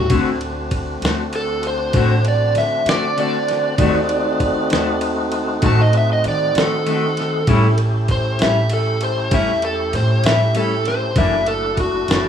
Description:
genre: slow blues.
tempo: 65 BPM (dotted quarters).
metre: 12/8.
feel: straight.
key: unclear.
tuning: A4 = 440 Hz.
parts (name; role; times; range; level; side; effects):
overdriven slide guitar; melody; 0.0-12.3 s; F#4 to A5; -20 LUFS; equal; plate reverb.
tonewheel organ; sustained chords; 0.0-12.3 s; A3 to G4; -23 LUFS; equal; slow rotary speaker, overdrive, chorus vibrato, plate reverb.
upright bass; bass; 0.0-12.3 s; F#1 to D#3; -21 LUFS; right 1 dB; none.
clean electric guitar; accompaniment; 0.1-12.3 s; F#2 to F#4; -22 LUFS; left 5 dB; harmonic tremolo, plate reverb.
dusty soul sampler-style drum kit; drums; 0.1-12.2 s; kick drum, ride cymbal, snare drum; -23 LUFS; right 1 dB; none.
room: moderate studio reverb, RT60 0.5 s.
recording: rough home demo mix, small room ambience.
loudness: -15 LUFS.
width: side -8 dB against mid.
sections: 0.0-12.3 A section.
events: none.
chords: 0.1 D7; 3.8 D#dim7; 7.5 A7; 11.2 F#7alt.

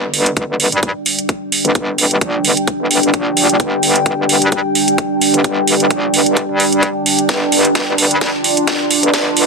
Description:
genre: bass house.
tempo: 130 BPM.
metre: 4/4.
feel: swing 55% on 16ths.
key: G minor.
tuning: A4 = 439 Hz.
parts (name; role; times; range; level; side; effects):
deep dark ambient pad; sustained chords; 0.0-9.5 s; D4 to C6; -16 LUFS; right 1 dB; chorus, built-in reverb, sidechain pumping.
metallic wobble bass; bass; 0.0-9.5 s; G1 to G2; -17 LUFS; equal; chorus, sidechain pumping, high-pass filter.
house drum kit; drums; 0.1-9.5 s; hi-hat, snare drum; -16 LUFS; right 3 dB; high-pass filter on snare, high-pass filter on hats.
electronic kick drum; drums; 0.4-9.2 s; none; -17 LUFS; equal; high-pass filter on kick.
room: light reverb.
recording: dense, heavily limited modern master, high-pass filter.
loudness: -12 LUFS.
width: side -3 dB against mid.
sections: 0.0-9.5 A section.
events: build-up 0.0-9.5; drum fill 7.3-9.5.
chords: 0.0 G5.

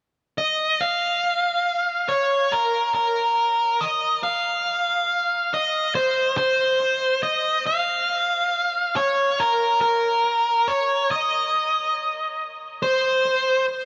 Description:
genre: rock.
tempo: 70 BPM.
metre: 4/4.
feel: straight.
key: Bb minor.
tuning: A4 = 440 Hz.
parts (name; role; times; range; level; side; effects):
octave-fuzz lead guitar; melody; 0.4-13.7 s; Bb4 to F5; -22 LUFS; equal; distortion, tape echo.
room: moderate huge ambient reverb, RT60 4.8 s.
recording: none.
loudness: -22 LUFS.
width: mono.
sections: 0.8-13.9 A section.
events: none.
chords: none.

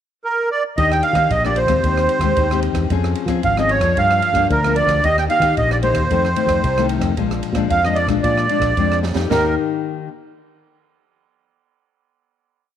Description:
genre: samba and choro.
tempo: 113 BPM.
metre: 4/4.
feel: straight.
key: Eb major.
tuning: A4 = 440 Hz.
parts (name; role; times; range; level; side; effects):
accordion; melody; 0.2-9.6 s; Bb4 to G5; -18 LUFS; right 3 dB; light tremolo tuning.
nylon-string guitar; accompaniment; 0.8-10.1 s; F2 to Ab4; -22 LUFS; left 11 dB; none.
fingered electric bass with an envelope filter; bass; 0.8-9.6 s; Ab1 to F3; -21 LUFS; equal; none.
open jazz drum kit; drums; 0.8-9.4 s; kick drum, ride cymbal, rim click, snare drum, toms; -26 LUFS; right 3 dB; none.
room: light reverb, small room ambience.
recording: 1960s-style stereo.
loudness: -15 LUFS.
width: side -9 dB against mid.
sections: 0.0-0.8 pickup bar; 0.8-9.3 A section; 9.3-11.4 final chord.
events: drum fill 9.0.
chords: 0.0 N.C.; 0.8 Ebmaj7; 1.8 Abmaj7/Eb; 2.9 Dbmaj7/F; 4.0 Gm7; 5.0 Eb; 6.1 F7; 7.2 Bb7; 9.3 Eb.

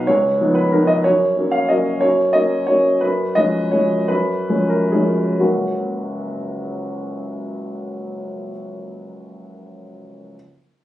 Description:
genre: classical, piano waltz.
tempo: 119-195 BPM.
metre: 3/4.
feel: rubato.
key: F# major.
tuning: A4 = 440 Hz.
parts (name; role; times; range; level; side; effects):
warm upright piano; solo; 0.0-10.4 s; F#1 to E#5; -17 LUFS; equal; none.
room: light reverb.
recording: recorded on a phone in the room, club reverb, compression.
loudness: -16 LUFS.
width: side -14 dB against mid.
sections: 0.0-5.4 A section; 5.4-8.3 B section.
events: slowing down 2.5-5.4.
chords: 0.1 C#9; 1.1 F#; 3.0 C#7/F#; 5.4 F#.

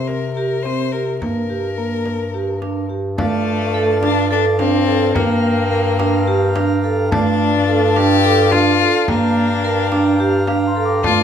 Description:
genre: contemporary instrumental, chamber music in an uneven meter.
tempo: 214 BPM (eighths).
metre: 7/8.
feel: straight.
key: G minor.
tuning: A4 = 440 Hz.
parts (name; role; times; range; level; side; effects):
rich violin; melody; 0.0-11.2 s; A3 to C5; -20 LUFS; left 7 dB; none.
vibraphone with medium mallets; arpeggios; 0.0-11.2 s; A3 to Bb4; -19 LUFS; right 5 dB; none.
warm bass clarinet; bass; 0.0-11.2 s; G2 to C3; -20 LUFS; left 2 dB; none.
frame drum; percussion; 0.1-11.2 s; none; -27 LUFS; left 1 dB; none.
pedal harmonium; sustained chords; 3.2-11.2 s; F4 to Bb5; -24 LUFS; right 2 dB; none.
worn celesta; texture; 3.2-4.1, 10.5-11.2 s; F5 to D6; -26 LUFS; left 4 dB; none.
room: moderate recital hall reverb, RT60 1.4 s.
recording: minimal, uncompressed stereo recording.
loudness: -14 LUFS.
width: side -8 dB against mid.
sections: 0.0-3.2 A section; 3.2-11.2 B section.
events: none.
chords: 0.0 C5; 1.2 Gm; 3.2 Dm/G; 5.2 Gm7; 7.1 Dm/G; 9.1 Gm7.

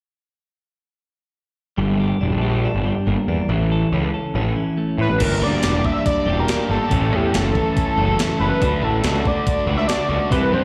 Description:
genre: indie rock.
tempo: 141 BPM.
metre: 4/4.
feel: straight.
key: unclear.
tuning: A4 = 440 Hz.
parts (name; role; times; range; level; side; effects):
twelve-string electric guitar; riff; 1.8-10.6 s; E3 to A4; -26 LUFS; equal; slapback echo.
fuzz picked electric bass; bass; 1.8-10.6 s; E1 to A2; -23 LUFS; equal; overdrive.
octave-doubled lead; melody; 5.0-10.6 s; G4 to E5; -25 LUFS; equal; chorus, phaser, slapback echo.
overdriven electric guitar; riff; 5.2-10.6 s; G2 to A4; -28 LUFS; equal; subtle chorus, slapback echo.
crisp 8-bit digital drum machine; drums; 5.2-10.4 s; crash cymbal, hi-hat, kick drum, snare drum; -25 LUFS; equal; none.
room: light reverb.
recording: live gig heard through the venue's PA, recital hall reverb.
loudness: -20 LUFS.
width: mono.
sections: 1.8-5.2 A section; 5.2-10.6 B section.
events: none.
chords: 1.8 Gm; 3.5 A; 5.2 Gm; 6.9 A; 8.6 D.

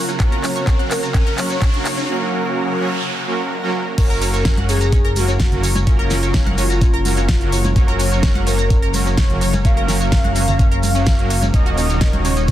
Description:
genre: progressive house.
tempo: 127 BPM.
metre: 4/4.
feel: straight.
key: unclear.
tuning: A4 = 435 Hz.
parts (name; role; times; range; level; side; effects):
warm velvety synth lead; melody; 0.0-12.5 s; F4 to F5; -25 LUFS; equal; chorus, vintage 12-bit sampler grit, tape echo.
shimmering ambient pad; sustained chords; 0.0-12.5 s; Db3 to Bb4; -29 LUFS; left 1 dB; chorus, built-in reverb, sidechain pumping.
analog pluck; arpeggios; 0.0-12.5 s; Db4 to Bb5; -27 LUFS; equal; wide subtle chorus, sidechain pumping, tape echo.
riser and noise sweep; sound effects; 0.0-4.0 s; none; -27 LUFS; left 1 dB; none.
backwards swelling texture; texture; 0.0-2.1 s; Bb5 to Gb6; -35 LUFS; right 2 dB; none.
pop drum kit; drums; 0.1-12.5 s; crash cymbal, handclaps, hi-hat, snare drum; -25 LUFS; equal; studio reverb, soft clipping on snare.
shekere; percussion; 0.1-12.5 s; none; -31 LUFS; right 4 dB; none.
soft supersaw; stabs; 0.2-12.3 s; Eb3 to Db5; -23 LUFS; right 2 dB; sidechain pumping, tape echo.
electronic kick drum; drums; 0.2-12.5 s; none; -15 LUFS; equal; studio reverb.
fat analog bass; bass; 4.0-12.5 s; Eb1 to Gb1; -20 LUFS; equal; tube saturation, sidechain pumping.
congas; percussion; 4.6-12.2 s; none; -27 LUFS; equal; sidechain pumping on perc.
room: light reverb.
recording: dense, heavily limited modern master.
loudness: -14 LUFS.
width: side -12 dB against mid.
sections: 0.0-4.0 A section; 4.0-12.5 B section.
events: build-up 0.0-4.0; drum fill 0.0-2.1; riser 0.0-2.1; filter sweep on supersaw synth 0.0-4.0; break 2.1-4.0; noise sweep 2.1-4.0; drop 4.0-12.5.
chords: 0.0 Gb; 11.5 Ebm7.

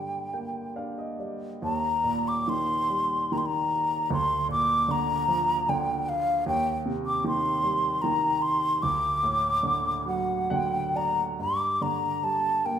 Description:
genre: celtic folk, Celtic slow air.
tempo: 66-78 BPM.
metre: 3/4.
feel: rubato.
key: G minor.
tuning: A4 = 440 Hz.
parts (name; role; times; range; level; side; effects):
breathy wooden flute; melody; 0.0-12.8 s; F5 to D6; -25 LUFS; left 1 dB; none.
warm upright piano; accompaniment; 0.0-12.8 s; D2 to G5; -31 LUFS; right 3 dB; none.
room: moderate recital hall reverb, RT60 1.4 s.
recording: recorded in a church or concert hall.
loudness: -24 LUFS.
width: side -9 dB against mid.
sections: 0.0-1.6 A section; 1.6-11.4 B section; 11.4-12.8 A section.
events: upright piano fill 0.0-1.6, 10.1-11.4.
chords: 0.0 Gm; 1.6 Eb; 4.1 Bb/D; 6.5 Cm/Eb; 8.8 D; 11.4 Gm.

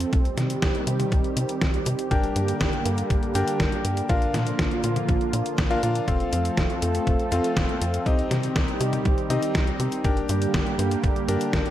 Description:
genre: italo disco.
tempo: 121 BPM.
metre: 4/4.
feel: straight.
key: G minor.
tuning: A4 = 439 Hz.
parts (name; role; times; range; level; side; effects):
warm analog pad; sustained chords; 0.0-11.7 s; D3 to A4; -28 LUFS; right 2 dB; chorus.
tight sequencer bass; bass; 0.0-11.6 s; F1 to C3; -28 LUFS; equal; none.
detuned 8-bit digital drum machine; drums; 0.0-11.7 s; hi-hat, snare drum, toms; -29 LUFS; equal; gated reverb.
electronic kick drum; drums; 0.1-11.6 s; none; -25 LUFS; equal; none.
bright electric grand piano; stabs; 2.1-11.7 s; C4 to G5; -28 LUFS; left 3 dB; digital delay.
room: light reverb.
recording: none.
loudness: -21 LUFS.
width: side -12 dB against mid.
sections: 0.0-11.7 A section.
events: none.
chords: 0.1 Cm; 2.1 Gm; 4.1 Bb; 6.1 F; 8.1 Cm; 10.0 Gm.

